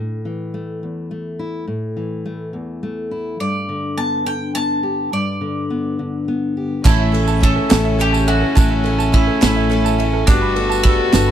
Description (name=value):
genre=indie folk with a building arrangement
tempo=70 BPM (dotted quarters)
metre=6/8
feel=straight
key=unclear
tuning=A4 = 439 Hz
part: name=fingerpicked steel-string acoustic guitar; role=accompaniment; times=0.0-6.8 s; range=E2 to G4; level=-23 LUFS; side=left 2 dB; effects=none
part: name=bowl-back mandolin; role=melody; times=3.4-11.3 s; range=D4 to A5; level=-22 LUFS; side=right 1 dB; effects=none
part: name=warm fiddle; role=second line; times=6.8-11.3 s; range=C#4 to F#4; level=-21 LUFS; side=left 4 dB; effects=none
part: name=picked twelve-string acoustic guitar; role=accompaniment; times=6.8-11.3 s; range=A2 to A4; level=-23 LUFS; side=left 6 dB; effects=none
part: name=pedal harmonium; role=sustained chords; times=6.8-11.3 s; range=B2 to E4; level=-27 LUFS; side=right 3 dB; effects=none
part: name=group handclap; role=percussion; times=6.8-11.3 s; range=none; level=-28 LUFS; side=right 3 dB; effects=none
part: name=bright upright piano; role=arpeggios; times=6.9-11.3 s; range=A4 to B5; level=-24 LUFS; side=right 14 dB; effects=none
part: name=upright bass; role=bass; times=6.9-11.3 s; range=G1 to A1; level=-19 LUFS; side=right 1 dB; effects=none
part: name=unplugged drum kit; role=drums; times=6.9-11.3 s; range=crash cymbal, kick drum, ride cymbal, snare drum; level=-17 LUFS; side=right 1 dB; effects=none
part: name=tambourine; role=percussion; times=6.9-11.3 s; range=none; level=-31 LUFS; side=right 12 dB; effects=none
room=little or no reverb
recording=dry, close 1970s-style studio recording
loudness=-16 LUFS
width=side -10 dB against mid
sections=0.0-6.9 A section; 6.9-11.3 B section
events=none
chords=0.0 A5; 3.4 Gadd9; 6.9 A; 10.3 Gadd9